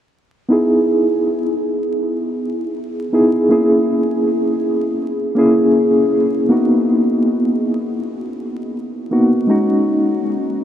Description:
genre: trip hop.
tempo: 80 BPM.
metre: 4/4.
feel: straight.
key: unclear.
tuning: A4 = 444 Hz.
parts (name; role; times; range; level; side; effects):
mellow reed electric piano; accompaniment; 0.5-10.6 s; G#3 to G#4; -14 LUFS; equal; tremolo, vintage 12-bit sampler grit, low-pass filter, tape echo.
room: wet huge ambient reverb, RT60 8.7 s.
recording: dreamy mix soaked in reverb, vinyl crackle.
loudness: -14 LUFS.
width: side -10 dB against mid.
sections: 0.5-10.6 A section.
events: filter sweep on reed electric piano 0.5-10.6.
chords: 0.5 Emaj7/B; 3.5 A#m7b5; 6.5 Bmaj7/A#; 9.5 G#7sus4.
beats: | 0.49 1.24 1.99 2.74 | 3.49 4.24 4.99 5.74 | 6.49 7.24 7.99 8.74 | 9.49 10.24.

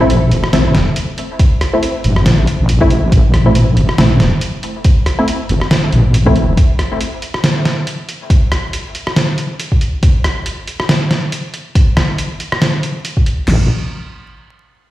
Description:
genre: deep dubstep.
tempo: 139 BPM.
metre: 4/4.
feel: swing 56% on 16ths, half-time.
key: A minor.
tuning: A4 = 440 Hz.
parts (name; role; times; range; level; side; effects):
filtered dub chord stab; stabs; 0.0-6.4 s; A3 to E4; -18 LUFS; left 1 dB; chorus, vintage 12-bit sampler grit, dub echo.
wobble bass; bass; 0.0-6.6, 13.5-13.7 s; E1 to A1; -12 LUFS; equal; chorus.
trip hop sampler-style drum kit; drums; 0.1-13.4 s; hi-hat, rim click, snare drum; -17 LUFS; equal; none.
deep house drum kit; drums; 1.4-13.6 s; crash cymbal, kick drum, snare drum; -11 LUFS; equal; none.
room: light reverb.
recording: played on a big sound system in a bare room, large studio reverb, vinyl crackle.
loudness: -11 LUFS.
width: side -15 dB against mid.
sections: 0.0-13.5 A section; 13.5-14.9 B section.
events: none.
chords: 0.0 A5; 13.5 N.C..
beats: 0.10 0.53 0.96 | 1.39 1.83 2.26 2.69 | 3.12 3.55 3.98 4.42 | 4.85 5.28 5.71 6.14 | 6.57 7.01 7.44 7.87 | 8.30 8.73 9.16 9.60 | 10.03 10.46 10.89 11.32 | 11.75 12.19 12.62 13.05 | 13.48.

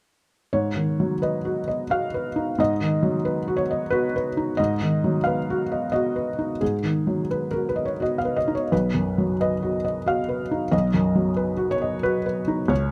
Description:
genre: classical.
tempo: 90 BPM.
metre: 3/4.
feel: rubato.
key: G# dorian.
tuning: A4 = 439 Hz.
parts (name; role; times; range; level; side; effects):
felt-muted upright piano; accompaniment; 0.5-12.9 s; B1 to E#5; -24 LUFS; equal; none.
room: little or no reverb.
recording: close, detailed microphones.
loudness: -24 LUFS.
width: mono.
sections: 0.5-12.9 A section.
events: none.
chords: 0.5 G#m7; 8.7 B.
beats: | 0.54 1.23 1.91 | 2.59 3.25 3.92 | 4.58 5.25 5.92 | 6.61 7.31 8.01 | 8.72 9.40 10.07 | 10.73 11.39 12.05 | 12.71.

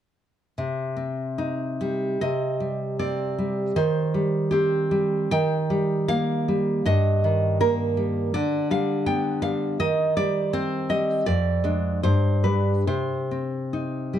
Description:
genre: romantic piece for solo classical guitar.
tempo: 69-82 BPM.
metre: 2/4.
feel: rubato.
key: C minor.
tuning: A4 = 444 Hz.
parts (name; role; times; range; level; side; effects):
nylon-string guitar; solo; 0.6-14.2 s; F2 to G5; -22 LUFS; equal; none.
room: light reverb.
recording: dark, warm production.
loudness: -22 LUFS.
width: side -10 dB against mid.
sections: 0.6-2.2 A section; 2.2-14.2 B section.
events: none.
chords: 0.6 Cm; 3.8 Cm/Eb; 5.3 Eb; 6.8 Eb/G; 8.3 G/D; 9.8 Cm/Eb; 11.3 Ddim/F; 12.0 G; 12.9 Cm.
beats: | 0.58 1.38 | 2.21 2.99 | 3.75 4.50 | 5.31 6.08 | 6.84 7.58 | 8.32 9.06 | 9.79 10.53 | 11.26 12.04 | 12.87 13.73.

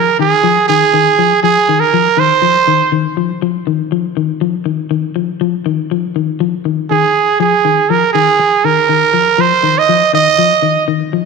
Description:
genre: afrobeat.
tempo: 121 BPM.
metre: 4/4.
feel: swing 53% on 16ths.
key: F minor.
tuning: A4 = 440 Hz.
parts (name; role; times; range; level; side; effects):
growling trumpet; melody; 0.0-2.9, 6.9-10.8 s; Ab4 to Eb5; -10 LUFS; right 7 dB; none.
clean electric guitar; arpeggios; 0.0-11.3 s; Eb3 to F3; -16 LUFS; left 13 dB; none.
room: wet echo chamber reverb, RT60 2.2 s.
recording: 1960s-style stereo with parts hard left and right.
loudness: -10 LUFS.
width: side -4 dB against mid.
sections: 0.0-11.3 A section.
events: none.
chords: 0.0 Fm7.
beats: 0.45 0.94 | 1.44 1.94 2.43 2.93 | 3.42 3.92 4.42 4.91 | 5.41 5.91 6.40 6.90 | 7.39 7.89 8.39 8.88 | 9.38 9.88 10.37 10.87.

